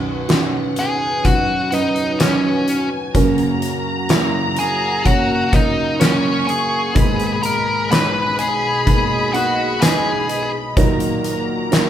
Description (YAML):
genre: pop ballad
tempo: 63 BPM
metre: 4/4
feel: straight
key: B major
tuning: A4 = 441 Hz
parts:
  - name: warm studio violin section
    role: second line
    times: 0.0-11.9 s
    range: F#5 to C#6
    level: -25 LUFS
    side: left 1 dB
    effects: none
  - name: felt-muted upright piano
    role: accompaniment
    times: 0.0-11.9 s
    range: B1 to C#5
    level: -22 LUFS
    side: right 5 dB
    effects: none
  - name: chorused pulse-width pad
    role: sustained chords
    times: 0.0-11.9 s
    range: A#2 to D#5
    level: -26 LUFS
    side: left 1 dB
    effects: none
  - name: picked steel-string acoustic guitar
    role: arpeggios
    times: 0.0-11.9 s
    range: F#2 to A#4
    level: -29 LUFS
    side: left 5 dB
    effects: none
  - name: huge arena drum kit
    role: drums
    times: 0.3-11.9 s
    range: hi-hat, kick drum, snare drum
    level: -19 LUFS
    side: left 1 dB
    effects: none
  - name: fuzz lead guitar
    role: melody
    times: 0.8-10.5 s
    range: C#4 to B5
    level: -19 LUFS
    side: left 1 dB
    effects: distortion
room: moderate large studio reverb, RT60 0.8 s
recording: band playing live in one room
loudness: -15 LUFS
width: side -10 dB against mid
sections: 0.0-11.9 A section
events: none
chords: 0.0 Badd9; 3.1 F#; 7.0 G#madd9; 10.8 D#m/A#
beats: 0.29 1.24 2.19 | 3.15 4.10 5.05 6.00 | 6.96 7.91 8.86 9.81 | 10.77 11.72